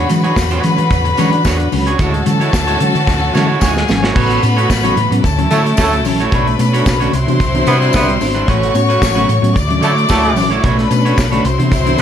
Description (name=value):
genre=disco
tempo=111 BPM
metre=4/4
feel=straight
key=unclear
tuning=A4 = 440 Hz
part: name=warm studio violin section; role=second line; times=0.0-12.0 s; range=G#4 to D6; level=-18 LUFS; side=left 4 dB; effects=none
part: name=electric guitar at the edge of break-up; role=accompaniment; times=0.0-12.0 s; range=G3 to C#5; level=-20 LUFS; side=right 4 dB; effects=none
part: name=mellow tine electric piano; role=accompaniment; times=0.0-12.0 s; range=A2 to D4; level=-20 LUFS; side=left 1 dB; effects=fast stereo tremolo
part: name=clear studio string section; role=sustained chords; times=0.0-12.0 s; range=C#3 to F#4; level=-21 LUFS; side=left 1 dB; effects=none
part: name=hollow-body short-scale fingered electric bass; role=bass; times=0.0-12.0 s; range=G#1 to E3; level=-17 LUFS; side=equal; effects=none
part: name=modern studio drum kit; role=drums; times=0.1-12.0 s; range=crash cymbal, hi-hat, kick drum, snare drum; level=-19 LUFS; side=equal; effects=none
part: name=tambourine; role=percussion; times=0.1-12.0 s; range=none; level=-32 LUFS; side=left 9 dB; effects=none
part: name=warm horn section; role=stabs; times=5.5-12.0 s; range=F#3 to B4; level=-18 LUFS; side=equal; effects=none
room=light reverb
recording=none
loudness=-11 LUFS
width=side -9 dB against mid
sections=0.0-4.2 A section; 4.2-12.0 B section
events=drum fill 3.1-4.2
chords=0.0 E13; 2.0 Dmaj9#11; 4.2 A69; 5.2 Dmaj9; 6.3 Bm9; 7.1 Cmaj9; 8.5 A69; 9.6 Dmaj9; 10.6 Bm9; 11.4 Cmaj9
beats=0.37 0.91 1.45 | 1.99 2.53 3.07 3.61 | 4.15 4.69 5.24 5.78 | 6.32 6.86 7.40 7.94 | 8.48 9.02 9.56 10.10 | 10.64 11.18 11.72